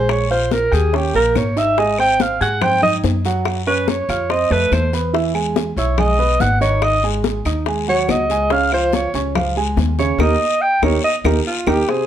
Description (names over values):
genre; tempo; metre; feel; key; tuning
Afro-Cuban jazz; 142 BPM; 4/4; straight; Ab major; A4 = 440 Hz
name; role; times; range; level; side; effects
breathy alto saxophone; melody; 0.0-12.1 s; F4 to G5; -18 LUFS; right 1 dB; plate reverb
warm upright piano; accompaniment; 0.0-12.1 s; C3 to Ab6; -21 LUFS; right 4 dB; none
upright bass; bass; 0.0-11.8 s; Ab1 to Ab2; -21 LUFS; equal; none
bongos; percussion; 0.1-12.1 s; none; -26 LUFS; left 9 dB; none
claves; percussion; 0.1-11.8 s; none; -30 LUFS; equal; none
congas; percussion; 0.1-12.1 s; none; -25 LUFS; left 5 dB; none
guiro; percussion; 0.1-12.1 s; none; -32 LUFS; left 9 dB; none
room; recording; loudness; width
light reverb; none; -15 LUFS; side -10 dB against mid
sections
0.0-11.9 A section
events
alto saxophone solo 0.0-11.9; band accent 10.2-11.9; drum fill 11.5-11.9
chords
0.1 Bb7sus4; 0.9 Eb5; 1.8 Ab; 3.5 Gb5; 4.3 F; 5.1 Emaj7; 6.8 Ab5; 8.5 Dbadd9; 10.2 Eb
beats
| 0.10 0.52 0.94 1.36 | 1.78 2.20 2.62 3.04 | 3.46 3.88 4.30 4.72 | 5.14 5.57 5.99 6.41 | 6.83 7.25 7.67 8.09 | 8.51 8.94 9.36 9.78 | 10.20 10.62 11.04 11.46 | 11.88